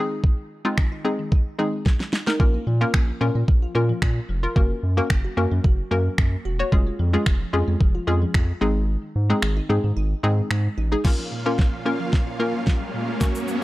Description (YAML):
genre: dance-pop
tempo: 111 BPM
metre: 4/4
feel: straight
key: Bb minor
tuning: A4 = 440 Hz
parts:
  - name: hollow square pluck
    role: accompaniment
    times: 0.0-13.4 s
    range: Ab3 to Db5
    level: -25 LUFS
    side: left 1 dB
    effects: chorus, sidechain pumping
  - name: glassy wavetable pluck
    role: arpeggios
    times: 0.0-13.0 s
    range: Bb2 to Gb4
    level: -34 LUFS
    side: equal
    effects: chorus, sidechain pumping, analog delay
  - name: smooth R&B drum kit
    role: drums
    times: 0.2-13.6 s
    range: crash cymbal, finger snaps, kick drum, shaker, snare drum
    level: -20 LUFS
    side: equal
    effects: none
  - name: round analog bass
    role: bass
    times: 2.4-11.0 s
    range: E1 to Bb2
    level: -22 LUFS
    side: equal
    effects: sidechain pumping
  - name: supersaw chords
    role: sustained chords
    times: 11.0-13.6 s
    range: Gb2 to F5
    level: -29 LUFS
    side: right 2 dB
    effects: sidechain pumping
  - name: riser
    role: sound effects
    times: 12.1-13.6 s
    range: none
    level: -31 LUFS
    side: equal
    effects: none
room: digital ambience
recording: dry, gritty hardware recording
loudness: -19 LUFS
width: side -18 dB against mid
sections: 0.0-11.0 A section; 11.0-13.6 B section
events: drum fill 1.9-2.4, 11.0-13.6; kick muted 8.9-11.0; build-up 11.0-13.6; riser 12.1-13.6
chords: 0.0 Ab; 2.4 Bbm; 4.6 Gb; 6.7 Db/F; 8.6 Ab; 11.0 Bbm